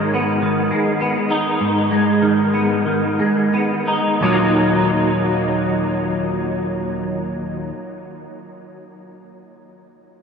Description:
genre	rock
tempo	84-104 BPM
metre	4/4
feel	straight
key	Eb minor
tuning	A4 = 440 Hz
part	semi-hollow electric guitar	arpeggios	0.0-7.7 s	Eb2 to Eb4	-17 LUFS	equal	ensemble chorus, tape echo
room	wet huge ambient reverb, RT60 8.7 s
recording	dreamy mix soaked in reverb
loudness	-16 LUFS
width	side -6 dB against mid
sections	0.0-4.2 A section; 4.2-7.1 B section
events	slowing down 0.0-4.2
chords	0.0 Abm; 4.2 Ebm

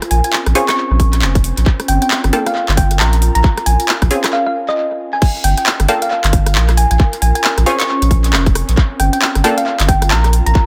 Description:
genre	UK garage, two-step garage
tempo	135 BPM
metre	4/4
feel	swing 60% on 16ths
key	unclear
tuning	A4 = 436 Hz
part	garage drum kit	drums	0.0-10.5 s	crash cymbal, handclaps, hi-hat, rim click	-21 LUFS	equal	small room ambience, tape echo
part	ethereal airy pad	texture	0.0-10.7 s	C4 to Bb4	-26 LUFS	equal	ensemble chorus, built-in reverb, sidechain pumping
part	thumb-piano-like synth pluck	melody	0.1-10.7 s	Eb5 to Db6	-21 LUFS	equal	chorus, cassette tape, tape echo
part	saturated sub bass	bass	0.1-10.5 s	F1 to Bb1	-16 LUFS	equal	none
part	punchy chord stab	stabs	0.6-9.5 s	Bb3 to A4	-20 LUFS	equal	chorus, analog delay
part	electronic kick drum	drums	1.0-10.7 s	none	-15 LUFS	equal	small room ambience
room	light reverb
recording	echo-heavy mix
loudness	-14 LUFS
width	mono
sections	0.0-5.2 A section; 5.2-10.7 B section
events	break 4.3-5.2; drop 5.2-10.7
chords	0.0 Bbm9; 1.7 Gm9; 3.2 Bbm9; 5.2 Gm9; 6.8 Bbm9; 8.8 Gm9

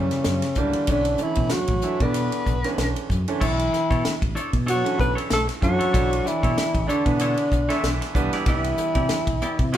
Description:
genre	electric jazz fusion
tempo	95 BPM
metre	4/4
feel	swing 55% on 16ths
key	B minor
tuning	A4 = 435 Hz
part	breathy alto saxophone	melody	0.0-9.8 s	C#4 to B4	-25 LUFS	right 1 dB	none
part	warm bass clarinet	second line	0.0-9.8 s	C#3 to B3	-31 LUFS	left 6 dB	none
part	bright baby grand piano	accompaniment	0.0-9.2 s	C#3 to E4	-28 LUFS	right 4 dB	none
part	mellow fretless electric bass	bass	0.0-9.8 s	A1 to C3	-27 LUFS	equal	none
part	tight funk drum kit	drums	0.1-9.8 s	crash cymbal, hi-hat, kick drum, ride cymbal, snare drum	-26 LUFS	equal	none
part	semi-hollow electric guitar	stabs	3.4-9.8 s	B3 to D5	-31 LUFS	equal	none
room	light reverb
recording	band playing live in one room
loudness	-20 LUFS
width	side -11 dB against mid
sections	0.0-3.4 A section; 3.4-9.8 A section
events	none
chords	0.0 F#7b9b13; 0.9 Bm11; 8.2 Cmaj9

